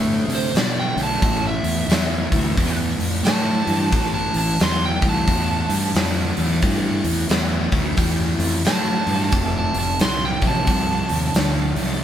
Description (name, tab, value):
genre	blues rock power trio and southern rock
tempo	89 BPM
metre	4/4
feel	swing 62% on 8ths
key	A minor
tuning	A4 = 440 Hz
part	fuzz guitar	riff	0.0-12.0 s	F2 to B3	-24 LUFS	equal	distortion
part	fuzz fingered electric bass	bass	0.0-12.0 s	F1 to C3	-23 LUFS	equal	overdrive
part	overdriven slide guitar	melody	0.3-12.0 s	C5 to C6	-25 LUFS	right 3 dB	none
part	big rock drum kit	drums	0.3-11.9 s	hi-hat, kick drum, snare drum	-22 LUFS	equal	none
room	light reverb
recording	band playing live in one room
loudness	-18 LUFS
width	side -10 dB against mid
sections	0.0-12.0 A section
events	none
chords	0.0 D7(no3); 1.2 A7(no3); 9.3 F